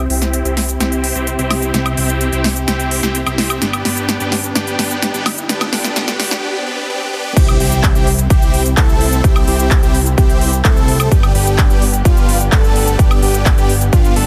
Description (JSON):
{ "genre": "EDM, festival progressive house", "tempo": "128 BPM", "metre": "4/4", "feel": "straight", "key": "C major", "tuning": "A4 = 439 Hz", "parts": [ { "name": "muted studio string section", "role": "sustained chords", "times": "0.0-14.3 s", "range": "C3 to A4", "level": "-28 LUFS", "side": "equal", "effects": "sidechain pumping" }, { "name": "big supersaw lead", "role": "riff", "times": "0.0-14.3 s", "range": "B3 to A4", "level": "-23 LUFS", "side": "equal", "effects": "sidechain pumping, low-pass filter, tape echo" }, { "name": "fat analog bass", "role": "bass", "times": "0.0-14.3 s", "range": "G1 to C2", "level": "-21 LUFS", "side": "equal", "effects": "sidechain pumping" }, { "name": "riser, swell and impact", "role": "sound effects", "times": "4.0-9.2 s", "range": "none", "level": "-31 LUFS", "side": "equal", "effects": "none" }, { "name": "big-room dance drum kit", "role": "drums", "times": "0.1-14.3 s", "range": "crash cymbal, handclaps, hi-hat, shaker, snare drum, woodblock", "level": "-22 LUFS", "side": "equal", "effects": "overdrive" }, { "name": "unison lead", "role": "arpeggios", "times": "7.4-14.3 s", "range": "F4 to A4", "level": "-24 LUFS", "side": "equal", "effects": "sidechain pumping, tape echo" }, { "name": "electronic kick drum", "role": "drums", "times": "7.4-14.0 s", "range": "none", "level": "-14 LUFS", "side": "equal", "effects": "overdrive" } ], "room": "little or no reverb", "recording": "dense, heavily limited modern master, high-pass filter", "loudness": "-14 LUFS", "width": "mono", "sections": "0.0-7.4 A section; 7.4-14.3 B section", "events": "build-up 0.0-7.4; drum fill 0.0-6.4; filter sweep on supersaw synth 0.0-7.4; filter sweep 0.0-7.4; swell 6.4-7.4; drop 7.4-14.3; impact 7.4-9.2", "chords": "0.0 C; 3.6 G; 7.4 C; 11.1 G", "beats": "0.34 0.80 1.27 | 1.74 2.21 2.68 3.15 | 3.62 4.08 4.55 5.02 | 5.49 5.96 6.43 6.90 | 7.37 7.83 8.30 8.77 | 9.24 9.71 10.18 10.65 | 11.12 11.59 12.05 12.52 | 12.99 13.46 13.93" }